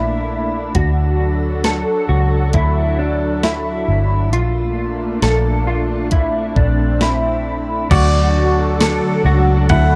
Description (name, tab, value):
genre	dream pop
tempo	67 BPM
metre	4/4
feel	straight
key	D major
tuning	A4 = 442 Hz
part	warm analog pad	sustained chords	0.0-10.0 s	F#3 to A4	-26 LUFS	equal	chorus
part	mellow electric guitar	arpeggios	0.0-10.0 s	D4 to A4	-22 LUFS	equal	ensemble chorus, tape echo
part	vintage muted fingered electric bass	bass	0.0-10.0 s	G1 to D2	-20 LUFS	equal	none
part	clean 12-bit digital drum machine	drums	0.7-9.9 s	crash cymbal, hi-hat, kick drum, ride cymbal, snare drum, tambourine	-21 LUFS	equal	overdrive
part	pedal steel guitar	melody	7.9-10.0 s	D5 to F#5	-23 LUFS	equal	tape echo
part	mellow electric guitar	accompaniment	7.9-10.0 s	D3 to D4	-25 LUFS	equal	tremolo, subtle chorus
part	vibraphone with medium hard mallets	texture	8.8-10.0 s	F#4	-31 LUFS	equal	none
room	digital ambience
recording	dry, gritty hardware recording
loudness	-17 LUFS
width	mono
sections	0.0-7.9 A section; 7.9-10.0 B section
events	none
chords	0.0 Bbmaj7; 0.7 D; 4.3 Bbmaj7; 7.9 D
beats	| 0.75 1.64 2.54 3.43 | 4.33 5.22 6.12 7.02 | 7.91 8.81 9.70